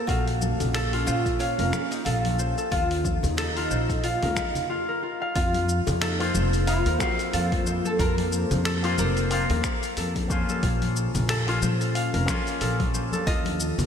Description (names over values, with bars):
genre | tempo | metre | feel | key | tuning
organic downtempo | 91 BPM | 4/4 | swing 57% on 16ths | unclear | A4 = 442 Hz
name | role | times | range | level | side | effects
oud | melody | 0.0-13.9 s | Db4 to Eb5 | -30 LUFS | equal | ping-pong delay
airy breathy pad | sustained chords | 0.0-13.9 s | F3 to F5 | -34 LUFS | equal | chorus, sidechain pumping
concert harp | arpeggios | 0.0-13.9 s | F4 to F5 | -30 LUFS | left 2 dB | diffuse ambient delay
upright bass | bass | 0.1-13.9 s | F1 to Bb2 | -27 LUFS | equal | sidechain pumping
dusty soul sampler-style drum kit | drums | 0.1-13.9 s | finger snaps, hi-hat, shaker | -33 LUFS | left 1 dB | none
electronic kick drum | drums | 0.1-13.4 s | none | -29 LUFS | equal | none
congas and bongos | percussion | 0.1-13.9 s | none | -34 LUFS | left 2 dB | none
electric guitar with an envelope filter | accompaniment | 6.2-13.3 s | Bb3 to F5 | -32 LUFS | left 3 dB | sidechain pumping, diffuse ambient delay
room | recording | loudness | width
moderate lush hall reverb, RT60 2.7 s | dreamy mix soaked in reverb | -22 LUFS | side -8 dB against mid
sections
0.0-5.4 A section; 5.4-13.9 B section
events
break 4.7-5.4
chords
0.1 Bbm; 2.7 Ebsus2; 5.4 Fsus4; 10.6 Bbm; 13.3 Ebsus2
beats
| 0.08 0.74 1.40 2.06 | 2.72 3.38 4.04 4.70 | 5.36 6.02 6.68 7.34 | 8.00 8.65 9.31 9.97 | 10.63 11.29 11.95 12.61 | 13.27